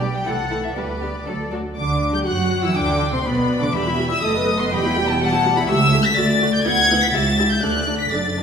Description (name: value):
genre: quick classical-period movement for string orchestra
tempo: 122 BPM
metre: 2/4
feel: straight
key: unclear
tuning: A4 = 440 Hz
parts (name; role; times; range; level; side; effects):
- warm symphonic violin section; melody; 0.0-8.4 s; D5 to B6; -21 LUFS; left 3 dB; none
- warm chamber violin section; second line; 0.0-8.4 s; D4 to G5; -26 LUFS; equal; none
- dark chamber viola section; accompaniment; 0.0-8.4 s; E3 to B4; -23 LUFS; equal; none
- dark chamber cello section; bass; 0.0-8.4 s; C#2 to B4; -24 LUFS; right 1 dB; none
- dark chamber double bass section; bass; 0.0-8.4 s; E1 to F#2; -26 LUFS; right 3 dB; none
room: wet recital hall reverb, RT60 1.5 s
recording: minimal, uncompressed stereo recording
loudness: -17 LUFS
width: side -7 dB against mid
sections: 0.0-1.8 A section; 1.8-8.4 B section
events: none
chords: 0.3 Am/C; 0.8 G/D; 1.3 D; 1.8 G5/D; 2.3 Esus2/F#; 2.8 G/D; 3.7 Em; 4.2 B7/F#; 4.7 Em; 5.7 A7/C#; 6.2 D; 6.7 E7/D; 7.2 A7/C#; 7.6 D